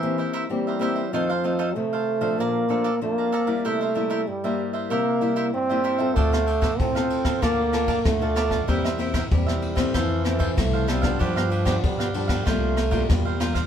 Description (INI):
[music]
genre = samba and choro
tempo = 95 BPM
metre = 4/4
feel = straight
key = unclear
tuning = A4 = 440 Hz
[part]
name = breathy trombone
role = second line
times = 0.0-13.5 s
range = E3 to C4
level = -25 LUFS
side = right 2 dB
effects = none
[part]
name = cavaquinho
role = accompaniment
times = 0.0-13.7 s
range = D4 to Bb5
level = -30 LUFS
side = right 4 dB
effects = none
[part]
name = nylon-string guitar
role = accompaniment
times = 0.0-13.7 s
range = F2 to A4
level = -28 LUFS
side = left 5 dB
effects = none
[part]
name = upright bass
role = bass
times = 6.2-13.6 s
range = C2 to G2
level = -27 LUFS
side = equal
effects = none
[part]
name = jazz brush drum kit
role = drums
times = 6.2-13.7 s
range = kick drum, ride cymbal, rim click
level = -26 LUFS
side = left 1 dB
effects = none
[sound]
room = moderate studio reverb, RT60 0.7 s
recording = band playing live in one room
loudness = -21 LUFS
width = side -8 dB against mid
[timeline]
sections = 0.0-13.7 A section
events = none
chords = 0.0 C7/E; 1.1 F7; 2.4 Bbmaj7; 3.6 C7; 6.2 Dm7; 7.4 Bbmaj7/D; 8.7 C7/E; 9.9 Fmaj7; 11.2 G7; 12.5 C7sus4